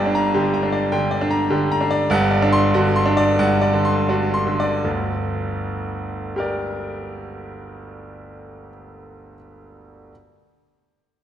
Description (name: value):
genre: classical, virtuoso piano study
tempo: 78-105 BPM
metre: 4/4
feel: rubato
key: G minor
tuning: A4 = 444 Hz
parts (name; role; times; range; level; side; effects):
- bright grand piano; solo; 0.0-10.1 s; G1 to C6; -18 LUFS; equal; none
room: wet scoring stage reverb, RT60 1.7 s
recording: dark, warm production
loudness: -17 LUFS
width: side -10 dB against mid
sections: 0.0-4.8 A section; 4.8-7.9 B section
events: slowing down 0.0-4.8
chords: 0.0 Gm; 2.1 D7/G; 4.8 Gm